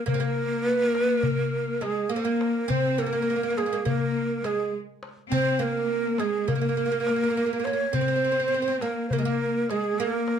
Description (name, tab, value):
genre	Turkish makam ensemble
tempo	206 BPM (eighths)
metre	9/8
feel	straight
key	unclear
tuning	A4 = 440 Hz
part	breathy ney	melody	0.0-10.4 s	Ab4 to Db5	-26 LUFS	right 2 dB	slapback echo
part	oud	second line	0.0-10.4 s	Ab3 to C4	-32 LUFS	right 5 dB	none
part	rich symphonic cello section	second line	0.0-10.4 s	Ab3 to C4	-30 LUFS	left 3 dB	none
part	darbuka	percussion	0.1-10.4 s	none	-30 LUFS	left 4 dB	none
room	moderate small room reverb, RT60 0.6 s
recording	dark, warm production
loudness	-23 LUFS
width	side -8 dB against mid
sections	0.0-10.4 A section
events	none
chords	none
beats	| 0.06 0.36 0.65 0.94 1.23 1.53 1.82 2.11 2.40 | 2.69 2.99 3.28 3.57 3.86 4.15 4.44 4.74 5.03 | 5.32 5.61 5.90 6.19 6.48 6.77 7.07 7.36 7.65 | 7.94 8.23 8.52 8.81 9.10 9.39 9.68 9.97 10.27